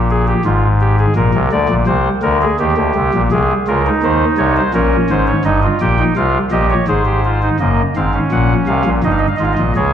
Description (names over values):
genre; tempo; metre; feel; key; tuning
classical, baroque-style 3-part fugue for pipe organ; 84 BPM; 3/4; straight; Ab major; A4 = 441 Hz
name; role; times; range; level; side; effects
chamber organ, soft reed; solo; 0.0-9.9 s; Gb1 to G5; -12 LUFS; equal; none
room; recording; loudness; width
wet recital hall reverb, RT60 1.4 s; dark, warm production; -12 LUFS; side -9 dB against mid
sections
0.0-7.6 A section; 7.6-9.9 B section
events
none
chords
0.5 Fm/Ab; 1.2 Bb; 2.6 Eb; 3.3 Ab/C; 4.7 Bbm7; 5.5 Eb/G; 6.9 Ab; 7.6 Ebm/Gb; 9.0 Eb/G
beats
0.46 | 1.16 1.87 2.59 | 3.31 4.02 4.74 | 5.45 6.16 6.87 | 7.59 8.32 9.03 | 9.75